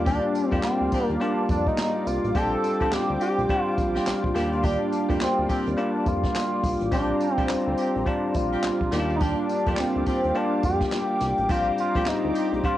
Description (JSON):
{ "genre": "R&B, new jack swing", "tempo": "105 BPM", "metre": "4/4", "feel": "swing 61% on 16ths", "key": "unclear", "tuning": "A4 = 440 Hz", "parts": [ { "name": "octave-doubled lead", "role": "melody", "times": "0.0-12.8 s", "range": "C4 to A4", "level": "-26 LUFS", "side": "equal", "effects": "chorus, phaser, cassette tape" }, { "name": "bell-like tine electric piano", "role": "accompaniment", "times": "0.0-12.8 s", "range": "G3 to D5", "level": "-27 LUFS", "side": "left 2 dB", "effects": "cassette tape" }, { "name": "brassy analog pad", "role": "sustained chords", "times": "0.0-12.8 s", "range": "G4 to D6", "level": "-37 LUFS", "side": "equal", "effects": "chorus, cassette tape" }, { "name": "fat analog bass", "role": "bass", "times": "0.0-12.6 s", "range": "A1 to F2", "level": "-31 LUFS", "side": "equal", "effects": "none" }, { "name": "warm horn section", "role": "stabs", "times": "0.1-12.5 s", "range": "C4 to G4", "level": "-37 LUFS", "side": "equal", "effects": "cassette tape" }, { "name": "jazz brush drum kit", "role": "drums", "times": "0.1-12.8 s", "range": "handclaps, hi-hat, kick drum, snare drum, tambourine", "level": "-29 LUFS", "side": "equal", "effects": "vintage 12-bit sampler grit" } ], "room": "moderate spring reverb, RT60 2.4 s", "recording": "home recording on cassette", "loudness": "-22 LUFS", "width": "side -13 dB against mid", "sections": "0.0-12.8 A section", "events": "none", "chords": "0.0 Ebmaj9; 2.4 Bb69; 4.3 Ebmaj9; 6.9 Bb69; 8.9 Ebmaj9; 11.5 Bb69" }